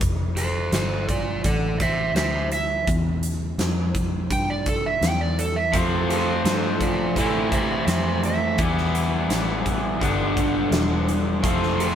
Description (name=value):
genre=blues rock power trio and southern rock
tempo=84 BPM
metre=4/4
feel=straight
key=A minor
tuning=A4 = 440 Hz
part: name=vintage muted picked electric bass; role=bass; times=0.0-11.9 s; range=E1 to A2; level=-26 LUFS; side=left 1 dB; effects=none
part: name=huge arena drum kit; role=drums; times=0.0-11.9 s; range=hi-hat, kick drum, snare drum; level=-26 LUFS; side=equal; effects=none
part: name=overdriven slide guitar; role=melody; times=0.4-11.9 s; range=F4 to G5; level=-25 LUFS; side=right 3 dB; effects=none
part: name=raw garage guitar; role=riff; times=5.7-11.9 s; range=G2 to F4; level=-23 LUFS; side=equal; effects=overdrive
room=moderate stone room reverb, RT60 1.4 s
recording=band playing live in one room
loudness=-20 LUFS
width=side -9 dB against mid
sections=0.0-11.9 A section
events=none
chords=0.0 F; 1.4 Am; 2.9 N.C.; 4.3 Emadd11; 5.7 F; 7.2 Am; 8.6 Em; 10.0 G; 11.4 F